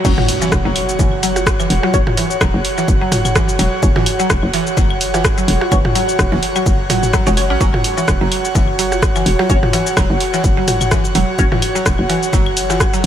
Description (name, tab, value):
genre	minimal techno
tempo	127 BPM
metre	4/4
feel	swing 56% on 16ths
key	unclear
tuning	A4 = 444 Hz
part	mallet-like synth pluck	riff	0.0-13.0 s	E3 to C#4	-22 LUFS	equal	lush chorus, sidechain pumping, analog delay
part	filtered dub chord stab	stabs	0.0-11.5 s	C#4 to C#5	-27 LUFS	left 2 dB	none
part	hollow knocking FM bass	bass	0.0-13.1 s	E1 to A1	-19 LUFS	equal	sidechain pumping
part	electronic kick drum	drums	0.0-12.9 s	none	-18 LUFS	equal	none
part	punchy analog drum machine	drums	0.0-13.1 s	crash cymbal, hi-hat, rim click, shaker	-21 LUFS	equal	none
part	impact	sound effects	0.2-1.9 s	none	-29 LUFS	equal	none
part	airy breathy pad	texture	0.0-13.1 s	F#4 to F#5	-20 LUFS	right 1 dB	chorus, sidechain pumping
part	electronic toms, percussion blips and claves	percussion	0.2-12.8 s	none	-23 LUFS	equal	ping-pong delay
room	moderate huge ambient reverb, RT60 7.9 s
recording	dreamy mix soaked in reverb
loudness	-13 LUFS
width	side -10 dB against mid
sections	0.0-13.1 A section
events	drop 0.0-13.1; impact 0.0-1.9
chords	0.0 F#5